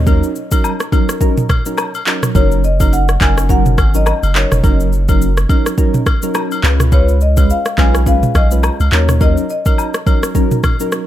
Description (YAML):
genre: afrobeats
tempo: 105 BPM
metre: 4/4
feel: swing 58% on 16ths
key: F# major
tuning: A4 = 438 Hz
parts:
  - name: marimba with medium mallets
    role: melody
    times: 0.0-10.6 s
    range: C#5 to G#5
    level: -22 LUFS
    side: left 3 dB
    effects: digital delay
  - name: punchy sub bass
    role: bass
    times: 0.0-9.4 s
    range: E#1 to D#2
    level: -14 LUFS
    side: equal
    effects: none
  - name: soft electric-piano-like synth keys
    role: accompaniment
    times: 0.1-11.0 s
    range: F#3 to B4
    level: -19 LUFS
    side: right 1 dB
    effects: chorus, phaser
  - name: afro-pop drum kit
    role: drums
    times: 0.1-11.1 s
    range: handclaps, kick drum, rim click, shaker, toms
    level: -14 LUFS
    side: equal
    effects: none
  - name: agogo bells and woodblock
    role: percussion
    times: 0.1-10.8 s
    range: none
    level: -24 LUFS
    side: left 5 dB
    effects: none
room: little or no reverb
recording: none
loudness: -11 LUFS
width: side -12 dB against mid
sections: 0.0-11.1 A section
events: none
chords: 0.0 D#m7; 2.4 F#6; 6.6 C#7; 8.9 D#m7